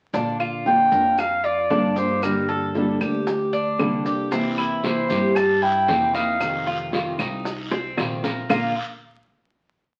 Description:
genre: latin, Cuban son and guajira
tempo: 115 BPM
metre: 4/4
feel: straight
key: Bb major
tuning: A4 = 440 Hz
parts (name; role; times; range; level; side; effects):
- nylon-string guitar; accompaniment; 0.1-8.7 s; Bb2 to A4; -28 LUFS; equal; none
- Cuban tres; arpeggios; 0.1-8.7 s; Bb3 to Bb4; -29 LUFS; equal; none
- upright bass; bass; 0.1-8.7 s; Bb1 to G2; -34 LUFS; equal; none
- bongos; percussion; 0.1-8.6 s; none; -32 LUFS; equal; none
- maracas; percussion; 0.1-8.6 s; none; -47 LUFS; equal; none
- claves; percussion; 0.4-8.6 s; none; -34 LUFS; equal; none
- mellow clarinet; melody; 0.7-8.7 s; Bb4 to A5; -23 LUFS; equal; none
- guiro; percussion; 4.3-8.6 s; none; -36 LUFS; equal; none
room: moderate studio reverb, RT60 0.8 s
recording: very old 78 rpm record, vinyl crackle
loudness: -22 LUFS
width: mono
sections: 0.1-8.5 verse; 8.5-10.0 final chord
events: drum fill 7.7-8.5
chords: 0.1 Bb; 2.2 Gmadd9; 4.3 C7; 6.4 F7; 8.5 Bb

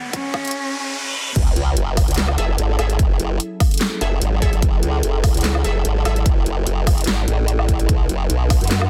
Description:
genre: heavy wobble dubstep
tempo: 147 BPM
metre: 4/4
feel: swing 53% on 16ths, half-time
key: F# minor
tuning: A4 = 440 Hz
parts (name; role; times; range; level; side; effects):
- dark cello; melody; 0.0-1.3 s; C#4; -29 LUFS; equal; tape echo
- evolving wavetable pad; sustained chords; 0.3-8.9 s; F#2 to F#5; -32 LUFS; equal; phaser, built-in reverb, sidechain pumping
- riser, reverse cymbal and sub drop; sound effects; 0.0-3.0 s; none; -28 LUFS; equal; none
- dubstep drum kit; drums; 0.1-8.9 s; crash cymbal, handclaps, hi-hat, snare drum, woodblock; -26 LUFS; equal; none
- electronic kick drum; drums; 0.1-8.6 s; none; -20 LUFS; equal; none
- formant-sweep wobble bass; bass; 1.4-8.9 s; F#1 to F#2; -21 LUFS; equal; chorus, overdrive
- orchestra-hit-like synth stab; stabs; 2.4-6.2 s; G#4 to E5; -31 LUFS; equal; built-in reverb, tape echo
room: little or no reverb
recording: dense, heavily limited modern master, high-pass filter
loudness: -19 LUFS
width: mono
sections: 0.0-1.4 A section; 1.4-8.9 B section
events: build-up 0.0-1.4; drum fill 0.0-0.5; riser 0.0-1.4; filter sweep on cello 0.0-1.4; filter sweep 0.0-1.4; reverse cymbal 0.5-1.4; drop 1.4-8.9; impact 1.4-3.0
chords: 0.0 F#5; 1.4 F#m7; 7.9 Bm

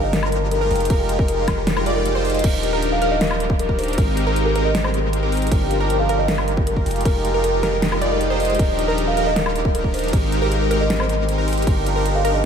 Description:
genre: future bass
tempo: 156 BPM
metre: 4/4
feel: half-time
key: Eb major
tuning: A4 = 438 Hz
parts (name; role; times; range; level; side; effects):
- buzzing kalimba; melody; 0.0-12.4 s; Bb4 to F5; -24 LUFS; equal; sidechain pumping, analog delay
- wide unison pluck; arpeggios; 0.0-12.4 s; Bb4 to D5; -28 LUFS; right 1 dB; sidechain pumping, tape echo
- soft supersaw; riff; 0.0-12.4 s; F3 to D5; -23 LUFS; equal; phaser, sidechain pumping, tape echo
- long sustained 808-style bass; bass; 0.0-12.5 s; Eb1 to Ab1; -23 LUFS; equal; sidechain pumping
- big-room dance drum kit; drums; 0.1-12.3 s; crash cymbal, hi-hat, snare drum, woodblock; -26 LUFS; equal; none
- electronic kick drum; drums; 0.9-11.7 s; none; -20 LUFS; equal; none
- ethereal airy pad; sustained chords; 3.2-12.5 s; G4 to Eb6; -32 LUFS; equal; ensemble chorus, built-in reverb, sidechain pumping
room: moderate lush hall reverb, RT60 2.2 s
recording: dreamy mix soaked in reverb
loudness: -17 LUFS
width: side -7 dB against mid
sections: 0.0-2.4 A section; 2.4-12.5 A section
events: drop 0.0-2.4, 2.4-12.5; kick drops out 2.1-2.4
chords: 0.0 Ebmaj9/G; 0.7 Fm11; 2.4 Ebmaj9; 4.0 Abmaj9; 5.5 Ebmaj9/G; 6.9 Fm11; 8.6 Ebmaj9; 10.1 Abmaj9; 11.7 Ebmaj9/G

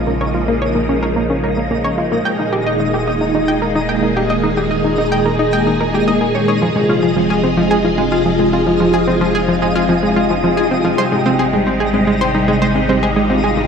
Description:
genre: ambient, sequencer-driven space music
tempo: 110 BPM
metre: 4/4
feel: straight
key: unclear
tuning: A4 = 440 Hz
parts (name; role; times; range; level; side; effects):
- phased string machine; sustained chords; 0.0-13.7 s; Bb2 to Ab4; -16 LUFS; equal; ensemble chorus, phaser
- soft round pluck; arpeggios; 0.0-13.7 s; G3 to Ab4; -25 LUFS; moving between left 5 dB and right 2 dB; none
- analog pluck; riff; 0.0-13.7 s; F3 to G5; -18 LUFS; equal; chorus, tape echo
- warm sub bass; bass; 0.0-13.7 s; Eb1 to Bb1; -27 LUFS; equal; none
- twinkling granular texture; texture; 0.0-13.7 s; Eb4 to Eb5; -25 LUFS; equal; built-in reverb
room: wet concert hall reverb, RT60 2.1 s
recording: none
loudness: -13 LUFS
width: side -6 dB against mid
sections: 0.0-13.7 A section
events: none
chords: 0.0 Bbm7; 2.3 Ebsus4; 6.6 Fm; 11.0 Abmaj7

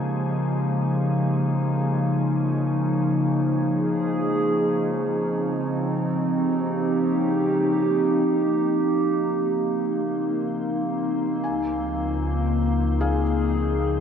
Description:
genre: ambient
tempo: free time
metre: none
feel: none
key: unclear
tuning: A4 = 441 Hz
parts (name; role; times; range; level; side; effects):
- warbly tape-like pad; sustained chords; 0.0-14.0 s; Db2 to Ab4; -22 LUFS; equal; chorus, built-in reverb
- organ-like drone; drone; 0.0-14.0 s; Db3 to C4; -28 LUFS; equal; ensemble chorus, built-in reverb
- felt-muted upright piano; arpeggios; 11.4-14.0 s; Ab4 to Ab5; -34 LUFS; left 2 dB; analog delay
room: wet plate reverb, RT60 2.8 s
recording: dreamy mix soaked in reverb, cassette tape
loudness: -21 LUFS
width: side -8 dB against mid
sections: 0.0-8.3 A section; 8.3-14.0 B section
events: fade-in on felt piano 8.3-14.0; fade-in on synth drone 8.3-14.0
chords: 0.0 Fm9; 2.0 Bbm7; 5.1 Cm7; 11.4 Db

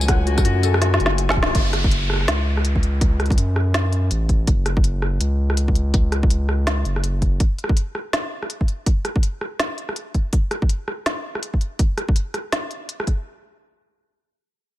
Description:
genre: half-time drum and bass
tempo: 164 BPM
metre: 4/4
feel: swing 60% on 16ths, half-time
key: unclear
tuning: A4 = 440 Hz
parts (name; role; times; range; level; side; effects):
- rich symphonic string section; sustained chords; 0.0-1.5 s; C#3 to G#5; -32 LUFS; left 2 dB; vintage 12-bit sampler grit, sidechain pumping
- felt-muted upright piano; arpeggios; 0.0-1.6 s; F#4 to F#5; -26 LUFS; left 6 dB; digital delay
- saturated sub bass; bass; 0.0-7.4 s; F#1 to F#2; -20 LUFS; equal; none
- organic electronic drum kit; drums; 0.0-13.2 s; hi-hat, rim click, snare drum, tambourine; -24 LUFS; equal; none
- electronic kick drum; drums; 0.1-13.2 s; none; -19 LUFS; equal; none
- downlifter; sound effects; 1.5-4.5 s; none; -30 LUFS; equal; none
room: digital ambience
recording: none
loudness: -18 LUFS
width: side -15 dB against mid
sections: 0.0-1.5 A section; 1.5-13.3 B section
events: drop 0.0-1.5; drum fill 0.8-1.5; band accent 1.4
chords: 0.0 F#m; 1.5 F#5

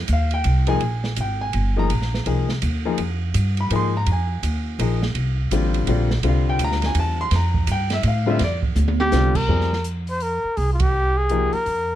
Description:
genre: modal jazz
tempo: 166 BPM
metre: 3/4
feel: swing 63% on 8ths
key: unclear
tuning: A4 = 435 Hz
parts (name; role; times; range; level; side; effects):
- upright bass; bass; 0.0-12.0 s; G1 to A2; -21 LUFS; equal; none
- warm baby grand piano; accompaniment; 0.1-11.5 s; D3 to C6; -24 LUFS; left 4 dB; none
- open jazz drum kit; drums; 0.1-11.8 s; crash cymbal, hi-hat, kick drum, ride cymbal, snare drum, toms; -28 LUFS; right 4 dB; none
- breathy trumpet; melody; 9.0-12.0 s; F4 to C5; -22 LUFS; equal; none
room: little or no reverb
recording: close, detailed microphones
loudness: -18 LUFS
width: side -12 dB against mid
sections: 0.8-9.5 A section; 9.5-12.0 B section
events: drum fill 8.8-9.1; band accent 10.8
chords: 0.0 Fsus2; 0.8 Bb13sus4; 5.2 C13sus4; 9.5 Fsus4

